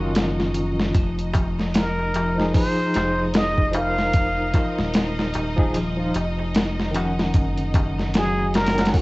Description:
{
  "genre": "trip hop",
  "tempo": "75 BPM",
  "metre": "4/4",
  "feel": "swing 59% on 16ths",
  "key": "F phrygian",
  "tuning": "A4 = 438 Hz",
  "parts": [
    { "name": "barky tine electric piano", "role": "accompaniment", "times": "0.0-9.0 s", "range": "Eb3 to Gb5", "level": "-27 LUFS", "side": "equal", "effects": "overdrive, tremolo, cassette tape, tape echo" },
    { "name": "bright studio violin section", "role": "sustained chords", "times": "0.0-9.0 s", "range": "Eb4 to Eb5", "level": "-33 LUFS", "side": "right 1 dB", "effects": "cassette tape" },
    { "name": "clean electric guitar", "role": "arpeggios", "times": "0.0-9.0 s", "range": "F3 to Gb3", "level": "-30 LUFS", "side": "left 1 dB", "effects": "cassette tape, analog delay" },
    { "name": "soft dub sub bass", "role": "bass", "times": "0.0-8.9 s", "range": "Eb1 to Gb1", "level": "-27 LUFS", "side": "equal", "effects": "tube saturation" },
    { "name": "dusty soul sampler-style drum kit", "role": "drums", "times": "0.2-9.0 s", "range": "hi-hat, kick drum, snare drum", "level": "-22 LUFS", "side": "equal", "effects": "overdrive, studio reverb, cassette tape" },
    { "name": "darbuka", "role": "percussion", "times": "0.9-9.0 s", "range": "none", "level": "-34 LUFS", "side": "left 1 dB", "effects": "none" },
    { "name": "trumpet with plunger mute", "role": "melody", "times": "1.8-9.0 s", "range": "Gb4 to F5", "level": "-26 LUFS", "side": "equal", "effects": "cassette tape, tape echo" }
  ],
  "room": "small room ambience",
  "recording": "home recording on cassette, vinyl crackle, nothing above 8.0 kHz",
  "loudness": "-19 LUFS",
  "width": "side -22 dB against mid",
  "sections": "0.0-9.0 A section",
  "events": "none",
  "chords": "0.0 Ebm7/Gb; 0.9 Fm7; 7.3 Ebm7/Gb"
}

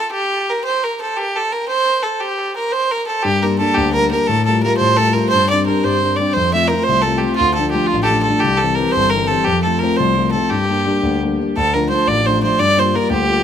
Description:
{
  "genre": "celtic folk",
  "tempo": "116 BPM (dotted quarters)",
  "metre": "6/8",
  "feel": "straight",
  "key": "G dorian",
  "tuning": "A4 = 440 Hz",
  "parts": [
    { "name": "clear fiddle", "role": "melody", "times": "0.0-13.4 s", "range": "F4 to E5", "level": "-16 LUFS", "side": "right 2 dB", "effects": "tape echo" },
    { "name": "dark concert grand piano", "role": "accompaniment", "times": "3.2-13.4 s", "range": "G1 to F4", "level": "-17 LUFS", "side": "left 3 dB", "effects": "none" }
  ],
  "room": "moderate studio reverb, RT60 0.8 s",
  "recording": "close, detailed microphones",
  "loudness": "-14 LUFS",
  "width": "side -8 dB against mid",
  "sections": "0.0-3.2 A section; 3.2-11.5 A section; 11.5-13.4 B section",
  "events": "none",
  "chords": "0.0 N.C.; 3.2 Gm; 4.3 Fadd9/A; 5.3 Csus2/G; 6.4 F; 7.4 Dm; 8.4 C; 9.5 F; 10.5 Gm; 11.5 Dm; 12.6 Gm7"
}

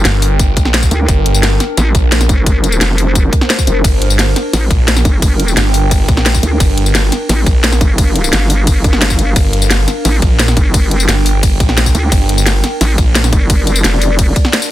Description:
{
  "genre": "dark technical drum and bass",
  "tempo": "174 BPM",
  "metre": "4/4",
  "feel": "straight",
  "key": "G minor",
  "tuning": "A4 = 440 Hz",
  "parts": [
    { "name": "vowel-sweep wobble bass", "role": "bass", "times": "0.0-14.3 s", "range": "F1 to D2", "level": "-13 LUFS", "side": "equal", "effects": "chorus" },
    { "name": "drum and bass drum kit", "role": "drums", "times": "0.0-14.7 s", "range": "hi-hat, ride cymbal, snare drum, tambourine", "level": "-15 LUFS", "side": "left 1 dB", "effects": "overdrive, studio ambience" },
    { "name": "warbly tape-like pad", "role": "texture", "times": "0.0-14.7 s", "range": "D4 to G5", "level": "-21 LUFS", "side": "right 1 dB", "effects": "chorus, built-in reverb, phaser, sidechain pumping" },
    { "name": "snarling distorted saw bass", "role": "bass", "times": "0.1-13.3 s", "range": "G1 to Bb1", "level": "-13 LUFS", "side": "equal", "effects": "distortion, tube saturation, sidechain pumping" },
    { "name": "electronic kick drum", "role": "drums", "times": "0.4-14.4 s", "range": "none", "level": "-12 LUFS", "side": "equal", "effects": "overdrive, studio ambience" }
  ],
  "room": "little or no reverb",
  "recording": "dense, heavily limited modern master",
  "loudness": "-9 LUFS",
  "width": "side -14 dB against mid",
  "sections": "0.0-14.7 A section",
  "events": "kick drops out 14.5",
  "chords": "0.0 Gm"
}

